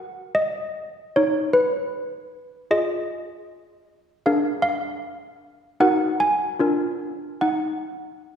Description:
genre	classical, tune for handbells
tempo	76 BPM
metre	4/4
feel	straight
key	Eb minor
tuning	A4 = 440 Hz
part	malleted handbells	solo	0.0-8.4 s	D4 to Ab5	-21 LUFS	equal	none
room	wet concert hall reverb, RT60 1.8 s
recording	heard from further back in the room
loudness	-21 LUFS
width	side -8 dB against mid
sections	0.0-8.4 A section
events	none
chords	0.0 Ebm; 1.1 Fm7b5/Eb; 4.2 Bb7/D; 5.8 Ebm; 6.6 Bb7/D; 7.4 Ebm

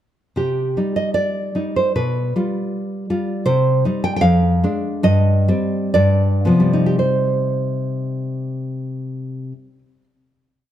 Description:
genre	romantic piece for solo classical guitar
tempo	55-81 BPM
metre	2/4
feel	rubato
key	C minor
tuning	A4 = 440 Hz
part	nylon-string guitar	solo	0.4-10.0 s	F2 to G5	-16 LUFS	equal	none
room	light reverb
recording	dark, warm production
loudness	-16 LUFS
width	side -11 dB against mid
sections	0.4-7.0 A section; 7.0-10.7 final chord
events	slowing down 2.7-7.0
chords	0.4 Cm; 1.9 G7/B; 3.5 Cm; 4.2 Ddim/F; 5.1 Cm/G; 6.0 G7; 7.0 Cm

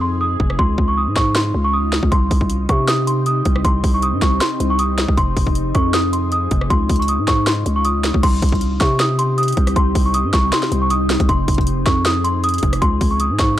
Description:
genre	hip hop, trap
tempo	157 BPM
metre	4/4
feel	half-time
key	C phrygian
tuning	A4 = 440 Hz
part	small celesta	melody	0.0-13.5 s	C6 to Eb6	-20 LUFS	equal	none
part	glassy FM pad	sustained chords	0.0-13.6 s	C3 to Ab4	-25 LUFS	left 2 dB	ensemble chorus, built-in reverb
part	growling 808-style bass	bass	0.0-13.6 s	F1 to C3	-19 LUFS	equal	none
part	trap drum kit	drums	0.4-13.5 s	crash cymbal, hi-hat, kick drum, rim click, snare drum	-18 LUFS	equal	overdrive
room	little or no reverb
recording	dry, gritty hardware recording, transformer saturation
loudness	-15 LUFS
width	side -12 dB against mid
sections	0.0-8.2 A section; 8.2-13.6 B section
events	break 0.0-2.1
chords	0.0 Fm7; 0.6 Dbadd9; 2.1 Cm; 5.2 Fm7; 6.7 Dbadd9; 8.2 Cm; 11.3 Fm7; 12.8 Dbadd9

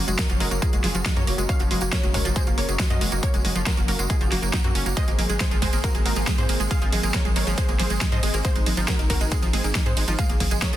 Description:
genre	uplifting trance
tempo	138 BPM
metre	4/4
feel	straight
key	unclear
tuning	A4 = 441 Hz
part	wide unison pluck	melody	0.0-10.8 s	Bb3 to F5	-31 LUFS	equal	cassette tape, sidechain pumping, tape echo
part	dark baby grand piano	second line	0.0-10.8 s	Eb4 to F5	-38 LUFS	left 1 dB	none
part	lush unison pad	sustained chords	0.0-10.8 s	Gb3 to Db4	-34 LUFS	right 1 dB	chorus, sidechain pumping
part	analog pluck	arpeggios	0.0-10.8 s	F3 to Eb4	-31 LUFS	right 3 dB	chorus, sidechain pumping, dub echo
part	tight sequencer bass	bass	0.0-10.8 s	Gb1 to Ab2	-27 LUFS	equal	sidechain pumping
part	big-room dance drum kit	drums	0.1-10.8 s	congas, hi-hat, ride cymbal, snare drum	-28 LUFS	right 1 dB	overdrive, small room ambience
part	tambourine	percussion	0.1-10.8 s	none	-35 LUFS	right 3 dB	none
part	electronic kick drum	drums	0.2-10.7 s	none	-23 LUFS	equal	overdrive, small room ambience
room	little or no reverb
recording	dense, heavily limited modern master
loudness	-20 LUFS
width	side -13 dB against mid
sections	0.0-10.8 A section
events	none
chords	0.0 Gb; 5.0 Abadd9

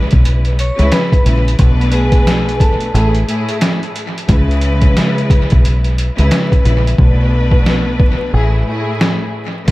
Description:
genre	hip hop, boom-bap hip-hop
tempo	89 BPM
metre	4/4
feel	swing 62% on 16ths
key	unclear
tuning	A4 = 439 Hz
part	warm symphonic string section	accompaniment	0.0-9.7 s	A2 to B4	-18 LUFS	left 1 dB	cassette tape, dub echo
part	deep dub fingered electric bass	bass	0.1-9.7 s	A1 to C#2	-14 LUFS	equal	none
part	trip hop sampler-style drum kit	drums	0.1-9.7 s	hi-hat, kick drum, snare drum	-14 LUFS	equal	overdrive, dub echo
part	vibraphone with hard mallets	melody	0.6-3.1, 9.7 s	G#4 to C#6	-22 LUFS	equal	dub echo
room	little or no reverb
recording	echo-heavy mix, vinyl crackle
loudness	-11 LUFS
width	side -19 dB against mid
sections	0.0-9.7 A section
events	hi-hats muted 7.0-9.7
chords	0.0 C#m7; 1.6 Bm7; 2.9 Eadd11/A; 4.3 C#m7; 7.0 Bm7; 8.3 Eadd11/A

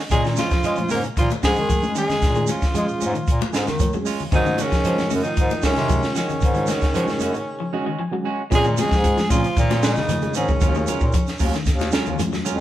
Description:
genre	afrobeat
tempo	114 BPM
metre	4/4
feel	straight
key	Bb minor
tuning	A4 = 438 Hz
part	reed electric piano	accompaniment	0.0-12.6 s	Eb3 to Ab5	-30 LUFS	right 2 dB	tremolo
part	raspy tenor saxophone	melody	0.1-11.4 s	Db4 to Bb4	-25 LUFS	equal	none
part	breathy alto saxophone	second line	0.1-11.4 s	Eb3 to Bb3	-31 LUFS	right 2 dB	none
part	mellow trombone section	second line	0.1-11.4 s	Db3 to Bb3	-33 LUFS	right 2 dB	none
part	electric guitar at the edge of break-up	arpeggios	0.1-12.5 s	C3 to Ab3	-29 LUFS	left 4 dB	none
part	semi-hollow electric guitar	stabs	0.1-12.6 s	Eb3 to Bb4	-29 LUFS	right 4 dB	none
part	clear bass clarinet	bass	0.1-12.6 s	Eb2 to Ab3	-25 LUFS	equal	none
part	compact cocktail drum kit	drums	0.1-12.6 s	hi-hat, kick drum, snare drum	-22 LUFS	equal	none
part	congas	percussion	0.1-12.5 s	none	-29 LUFS	left 4 dB	none
part	shekere	percussion	0.1-12.6 s	none	-32 LUFS	right 6 dB	none
room	moderate stone room reverb, RT60 1.0 s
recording	band playing live in one room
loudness	-18 LUFS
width	side -13 dB against mid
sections	0.0-8.5 A section; 8.5-12.6 B section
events	reed electric piano fill 3.3-4.3, 7.5-8.5; break 7.5-8.5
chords	0.1 Bbm7; 4.3 Ab7sus4; 8.5 Bbm9; 10.6 Ebm9

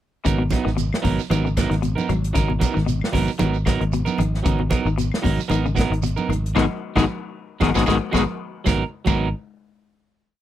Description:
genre	afrobeat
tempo	114 BPM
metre	4/4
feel	swing 54% on 16ths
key	G# minor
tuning	A4 = 443 Hz
part	clean electric guitar	arpeggios	0.2-9.2 s	G#2 to F#3	-26 LUFS	left 8 dB	spring reverb
part	electric guitar at the edge of break-up	stabs	0.2-9.3 s	F#3 to A#4	-25 LUFS	right 7 dB	none
part	fingered electric bass	bass	0.3-9.3 s	G#1	-23 LUFS	equal	none
part	warm soul drum kit	drums	0.3-9.2 s	crash cymbal, hi-hat, kick drum, snare drum	-24 LUFS	equal	none
part	shekere	percussion	0.3-9.2 s	none	-32 LUFS	right 10 dB	none
part	claves	percussion	0.5-9.2 s	none	-37 LUFS	left 10 dB	none
part	congas	percussion	0.5-9.2 s	none	-28 LUFS	right 4 dB	none
room	little or no reverb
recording	none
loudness	-19 LUFS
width	side -12 dB against mid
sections	0.3-8.7 groove; 8.7-10.4 final chord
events	band accent 6.5-8.7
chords	0.3 G#m9

